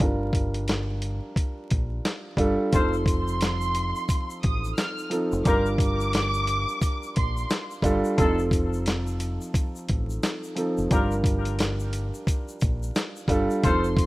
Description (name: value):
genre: hip hop, boom-bap hip-hop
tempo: 88 BPM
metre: 4/4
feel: swing 61% on 16ths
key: G minor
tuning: A4 = 440 Hz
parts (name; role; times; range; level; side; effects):
- dark concert grand piano; accompaniment; 0.0-14.1 s; F3 to Bb4; -28 LUFS; right 1 dB; high-pass filter, low-pass filter
- deep dub fingered electric bass; bass; 0.0-14.1 s; F1 to Bb1; -28 LUFS; equal; none
- dusty soul sampler-style drum kit; drums; 0.0-14.1 s; hi-hat, kick drum, snare drum; -25 LUFS; equal; none
- warm studio violin section; melody; 2.7-7.7, 13.6-14.1 s; C6 to F6; -31 LUFS; right 1 dB; high-pass filter, low-pass filter, ping-pong delay
- mellow horn section; stabs; 2.7-13.9 s; Eb4 to C5; -30 LUFS; left 2 dB; high-pass filter, low-pass filter, ping-pong delay
- egg shaker; percussion; 2.7-14.1 s; none; -47 LUFS; left 4 dB; none
room: studio ambience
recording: rough home demo mix, vinyl crackle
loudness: -23 LUFS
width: side -19 dB against mid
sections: 0.0-2.7 A section; 2.7-14.1 B section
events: none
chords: 0.0 Gm7; 2.7 F7; 5.5 Gm7; 8.2 F7; 10.9 Gm7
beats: | 0.00 0.68 1.36 2.05 | 2.73 3.41 4.09 4.77 | 5.46 6.14 6.82 7.50 | 8.18 8.87 9.55 10.23 | 10.91 11.59 12.27 12.96 | 13.64